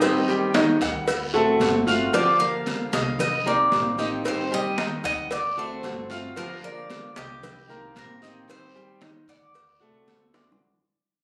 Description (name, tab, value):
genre	latin, Cuban son and guajira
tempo	113 BPM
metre	4/4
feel	straight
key	unclear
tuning	A4 = 440 Hz
part	Cuban tres	melody	0.0-10.3 s	G4 to F5	-28 LUFS	equal	none
part	flamenco guitar	accompaniment	0.0-10.6 s	D3 to G4	-31 LUFS	equal	none
part	bright concert grand piano	arpeggios	0.0-10.6 s	Eb3 to F6	-28 LUFS	equal	none
part	congas	percussion	0.0-10.6 s	none	-32 LUFS	equal	none
part	cowbell and bongos	percussion	0.0-10.6 s	none	-32 LUFS	equal	none
part	guiro	percussion	0.0-10.6 s	none	-40 LUFS	equal	none
part	maracas	percussion	0.0-10.6 s	none	-46 LUFS	equal	none
part	upright bass	bass	0.8-10.5 s	G1 to D2	-40 LUFS	equal	none
room	light reverb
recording	recorded on a phone in the room, club reverb, compression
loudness	-23 LUFS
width	mono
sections	0.0-10.6 A section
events	fade-out 0.0-10.6; drum fill 10.3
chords	0.0 Cmadd9; 1.1 D7; 2.1 Gm7; 3.2 Cm9; 4.2 Cmadd9; 5.3 D7; 6.4 Gm7; 7.4 Cm7; 8.5 Cmadd9; 9.5 D7